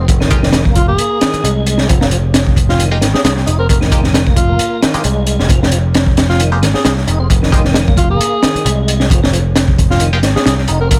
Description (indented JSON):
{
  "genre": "breakbeat, breaks",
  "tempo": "133 BPM",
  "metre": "4/4",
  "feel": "swing 55% on 16ths",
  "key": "F minor pentatonic",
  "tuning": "A4 = 439 Hz",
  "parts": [
    { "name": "tonewheel organ", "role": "riff", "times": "0.0-10.9 s", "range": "Eb3 to F4", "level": "-24 LUFS", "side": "equal", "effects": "chorus vibrato, slow rotary speaker, overdrive, dub echo" },
    { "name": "picked electric bass", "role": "bass", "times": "0.0-11.0 s", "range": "F1 to C2", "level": "-17 LUFS", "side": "equal", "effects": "tube saturation" },
    { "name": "crunchy breakbeat drum kit", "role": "drums", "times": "0.1-11.0 s", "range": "hi-hat, kick drum, snare drum", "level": "-15 LUFS", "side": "equal", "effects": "none" },
    { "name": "band-passed chord stab", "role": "stabs", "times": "0.3-10.2 s", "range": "Ab3 to G4", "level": "-26 LUFS", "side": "equal", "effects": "phaser, dub echo" },
    { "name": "breathy alto saxophone", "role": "melody", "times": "0.8-11.0 s", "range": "F4 to Bb4", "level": "-23 LUFS", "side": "equal", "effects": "old record sound, dub echo" }
  ],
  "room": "small room reverb",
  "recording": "faint mains hum",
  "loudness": "-13 LUFS",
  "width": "mono",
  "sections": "0.0-11.0 A section",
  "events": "none",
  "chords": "0.0 Fm7"
}